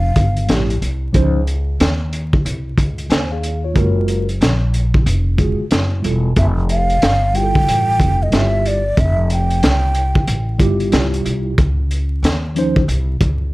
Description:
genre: hip hop, jazz-hop.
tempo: 92 BPM.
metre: 4/4.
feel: swing 64% on 16ths.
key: F major.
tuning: A4 = 440 Hz.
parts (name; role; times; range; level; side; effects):
breathy mellow bansuri; melody; 0.0-0.5, 6.4-10.6 s; D5 to G5; -19 LUFS; right 1 dB; none.
upright bass; bass; 0.0-13.5 s; E1 to Eb2; -18 LUFS; equal; none.
crunchy breakbeat drum kit; drums; 0.2-13.4 s; hi-hat, kick drum, snare drum; -17 LUFS; equal; none.
mellow tine electric piano; accompaniment; 0.5-12.8 s; F3 to Ab5; -20 LUFS; right 1 dB; medium stereo tremolo.
room: little or no reverb.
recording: vinyl crackle.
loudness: -14 LUFS.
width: side -20 dB against mid.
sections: 0.0-13.5 A section.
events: none.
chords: 0.0 Fmaj9; 1.1 Dbmaj9; 3.8 Gbmaj9; 6.4 Fmaj9; 11.6 Dbmaj9.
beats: 0.49 | 1.15 1.80 2.45 3.10 | 3.75 4.41 5.06 5.71 | 6.36 7.01 7.67 8.32 | 8.97 9.62 10.28 10.93 | 11.58 12.23 12.88.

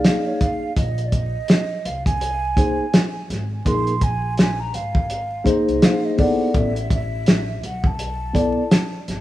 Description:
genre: hip hop, jazz-hop.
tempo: 83 BPM.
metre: 4/4.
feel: swing 59% on 16ths.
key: unclear.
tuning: A4 = 440 Hz.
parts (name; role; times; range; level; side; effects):
breathy mellow concert flute; melody; 0.0-9.1 s; Db5 to C6; -27 LUFS; right 2 dB; tape echo.
mellow tine electric piano; accompaniment; 0.0-8.6 s; Bb3 to F5; -21 LUFS; left 1 dB; medium stereo tremolo.
cloth-damped thuddy drum kit; drums; 0.0-9.2 s; hi-hat, kick drum, snare drum; -18 LUFS; equal; none.
upright bass; bass; 0.8-9.2 s; G1 to C2; -26 LUFS; equal; none.
room: light reverb, studio reverb.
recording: rough home demo mix, vinyl crackle, small room ambience.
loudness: -18 LUFS.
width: side -14 dB against mid.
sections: 0.0-9.2 A section.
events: none.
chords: 0.0 Bb9sus4; 6.5 Asus4.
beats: 0.04 | 0.77 1.49 2.21 2.93 | 3.66 4.38 5.10 5.83 | 6.55 7.27 7.99 8.72.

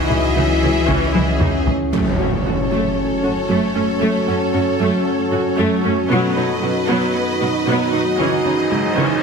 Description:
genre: cinematic, hybrid orchestral and electronic film score.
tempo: 115 BPM.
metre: 4/4.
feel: straight.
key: F# dorian.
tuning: A4 = 439 Hz.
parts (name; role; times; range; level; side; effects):
warm symphonic violin section; melody; 0.0-1.7 s; E5; -26 LUFS; left 3 dB; none.
bright symphonic violin section; second line; 0.0-9.2 s; G#4 to D#5; -25 LUFS; left 2 dB; none.
clear symphonic viola section; accompaniment; 0.0-9.2 s; E3 to F#4; -22 LUFS; equal; none.
deep dark ambient pad; sustained chords; 0.0-9.2 s; E3 to C#5; -21 LUFS; equal; chorus, built-in reverb.
warm French horn section; sustained chords; 0.0-1.7 s; E4; -24 LUFS; left 9 dB; none.
clear symphonic cello section; bass; 0.0-9.1 s; F#2 to E3; -26 LUFS; right 1 dB; none.
warm sub bass; bass; 0.0-1.9 s; C#2; -22 LUFS; equal; none.
thumb-piano-like synth pluck; arpeggios; 0.1-9.1 s; C#3 to B4; -24 LUFS; right 4 dB; chorus, tape echo.
clear symphonic double bass section; bass; 0.1-1.5 s; C#2; -25 LUFS; right 2 dB; none.
taiko ensemble; drums; 0.1-1.9 s; none; -22 LUFS; left 1 dB; none.
impact and reverse cymbal; sound effects; 1.9-4.0, 8.6-9.2 s; none; -24 LUFS; equal; none.
room: wet recital hall reverb, RT60 1.6 s.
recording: heavily compressed radio sound, multiband compression.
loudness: -15 LUFS.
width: side -5 dB against mid.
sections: 0.0-1.9 A section; 1.9-9.2 B section.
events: drum fill 1.1-1.9; impact 1.9-4.0; reverse cymbal 8.6-9.2.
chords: 0.0 C#madd9; 1.9 F#m; 6.1 B; 8.2 C#madd9.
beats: 0.36 0.89 1.41 | 1.93 2.45 2.97 3.50 | 4.02 4.54 5.06 5.58 | 6.10 6.62 7.15 7.67 | 8.19 8.71.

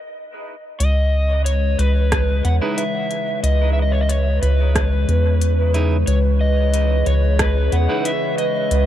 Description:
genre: ambient dub.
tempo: 91 BPM.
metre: 4/4.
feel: straight.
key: C# minor.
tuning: A4 = 440 Hz.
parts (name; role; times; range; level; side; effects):
overdriven slide guitar; melody; 0.8-8.9 s; B4 to F#5; -24 LUFS; left 2 dB; dub echo.
warbly tape-like pad; sustained chords; 1.3-8.9 s; C#3 to C#5; -24 LUFS; left 1 dB; chorus, built-in reverb.
round analog bass; bass; 0.8-8.9 s; C#2 to E2; -16 LUFS; equal; none.
organic electronic drum kit; drums; 0.8-8.9 s; hi-hat, rim click; -26 LUFS; equal; dub echo.
electronic kick drum; drums; 2.1-7.5 s; none; -25 LUFS; equal; overdrive.
clean electric guitar; stabs; 2.6-8.1 s; D#4 to B4; -29 LUFS; right 4 dB; dub echo.
room: light reverb, digital ambience.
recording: none.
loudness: -16 LUFS.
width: side -12 dB against mid.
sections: 0.8-8.9 A section.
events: break 0.0-0.8.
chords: 0.0 N.C.; 0.8 C#m9.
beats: 0.14 | 0.80 1.46 2.12 2.78 | 3.44 4.10 4.76 5.42 | 6.08 6.74 7.39 8.05 | 8.71.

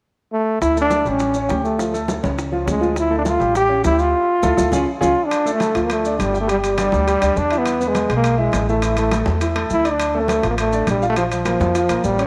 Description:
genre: latin, salsa.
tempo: 205 BPM.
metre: 4/4.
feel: straight.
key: D harmonic minor.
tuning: A4 = 443 Hz.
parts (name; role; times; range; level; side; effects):
clear trombone; melody; 0.3-12.2 s; F3 to G4; -21 LUFS; equal; none.
upright bass; bass; 0.6-12.3 s; G1 to F2; -26 LUFS; equal; none.
bongos; percussion; 0.6-5.1 s; none; -33 LUFS; equal; none.
congas; percussion; 0.6-12.2 s; none; -31 LUFS; equal; none.
maracas; percussion; 0.6-12.3 s; none; -39 LUFS; equal; none.
warm grand piano; accompaniment; 0.8-12.3 s; E3 to G5; -25 LUFS; equal; none.
timbales; percussion; 5.3-12.3 s; none; -31 LUFS; equal; none.
room: moderate echo chamber reverb, RT60 2.2 s.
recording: none.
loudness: -19 LUFS.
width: mono.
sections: 0.6-5.3 A section; 5.3-12.3 B section.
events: band accent 4.1-5.3; drum fill 4.7-5.3.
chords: 0.0 N.C.; 0.6 D5; 1.2 A7; 1.8 Dm; 2.4 C#; 3.0 Dm; 3.6 A7; 4.1 Dmadd9; 4.7 C#; 5.3 Dm; 6.5 G5; 7.7 E; 8.8 A5; 10.0 Dm; 11.2 Bb5.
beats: 0.03 0.32 | 0.62 0.91 1.21 1.50 | 1.79 2.09 2.38 2.67 | 2.97 3.26 3.56 3.85 | 4.14 4.44 4.73 5.02 | 5.32 5.61 5.90 6.20 | 6.49 6.78 7.08 7.37 | 7.66 7.95 8.25 8.54 | 8.83 9.12 9.42 9.71 | 10.00 10.29 10.58 10.88 | 11.17 11.46 11.75 12.04.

